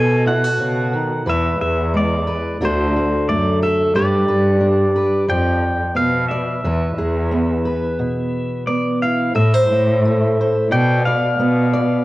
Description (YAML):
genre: acoustic folk-pop ballad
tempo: 89 BPM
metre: 4/4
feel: straight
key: unclear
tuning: A4 = 440 Hz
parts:
  - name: pedal steel guitar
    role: melody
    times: 0.0-12.0 s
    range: C5 to G#5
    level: -23 LUFS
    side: equal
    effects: cassette tape
  - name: fingerpicked steel-string acoustic guitar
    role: accompaniment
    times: 0.0-12.0 s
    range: A2 to D5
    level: -18 LUFS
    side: equal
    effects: cassette tape
  - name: warm cello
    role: bass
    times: 0.0-11.9 s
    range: D2 to B2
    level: -20 LUFS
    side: equal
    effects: none
room: light reverb, small room ambience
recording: home recording on cassette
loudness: -15 LUFS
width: side -18 dB against mid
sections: 0.0-9.4 A section; 9.4-12.0 A section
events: none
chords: 0.0 B7; 1.3 E; 2.6 D; 3.9 G; 5.3 Bdim/F; 6.6 E; 9.4 Am; 10.7 Bdim